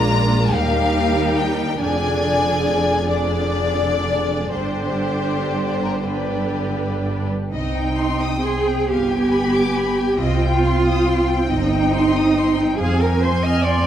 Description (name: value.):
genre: classical, slow romantic movement for string orchestra.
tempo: 39-49 BPM (dotted quarters).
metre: 6/8.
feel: rubato.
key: C minor.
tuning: A4 = 439 Hz.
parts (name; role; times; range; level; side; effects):
clear studio violin section; melody; 0.0-13.9 s; Bb4 to Bb5; -26 LUFS; left 4 dB; none.
rich chamber violin section; second line; 0.0-13.9 s; F4 to F6; -25 LUFS; left 3 dB; none.
rich chamber viola section; accompaniment; 0.0-13.9 s; D3 to Eb4; -24 LUFS; right 1 dB; none.
clear chamber double bass section; bass; 0.0-13.8 s; F1 to F2; -23 LUFS; right 2 dB; none.
warm chamber cello section; bass; 0.0-13.9 s; Eb2 to Eb5; -22 LUFS; right 2 dB; none.
room: wet scoring stage reverb, RT60 1.8 s.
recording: none.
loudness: -17 LUFS.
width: side -10 dB against mid.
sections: 0.0-7.5 A section; 7.5-13.9 B section.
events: none.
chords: 0.0 Bb7; 0.5 Eb; 1.8 Ddim/F; 4.5 Gsus4; 7.5 Cm; 8.9 G(b9); 10.2 Cm; 12.8 Fm.